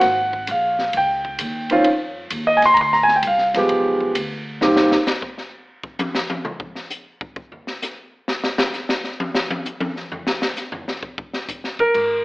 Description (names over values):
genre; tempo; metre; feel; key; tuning
jazz piano trio; 131 BPM; 4/4; swing 68% on 8ths; unclear; A4 = 441 Hz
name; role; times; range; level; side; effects
warm concert grand piano; melody; 0.0-4.9, 11.8-12.2 s; Eb3 to C6; -16 LUFS; equal; none
upright bass; bass; 0.0-4.9, 11.9-12.2 s; Ab1 to F2; -32 LUFS; equal; none
open jazz drum kit; drums; 0.0-12.1 s; crash cymbal, hi-hat, kick drum, ride cymbal, snare drum, toms; -24 LUFS; left 1 dB; none
room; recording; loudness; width
wet large studio reverb, RT60 0.9 s; AM radio sound; -18 LUFS; side -22 dB against mid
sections
0.0-12.0 A section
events
grand piano solo 0.0-12.0; drum solo 4.6-12.0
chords
0.0 Absus2; 0.9 Dbadd9; 2.8 Dm7b5; 3.7 G7b9; 4.6 N.C.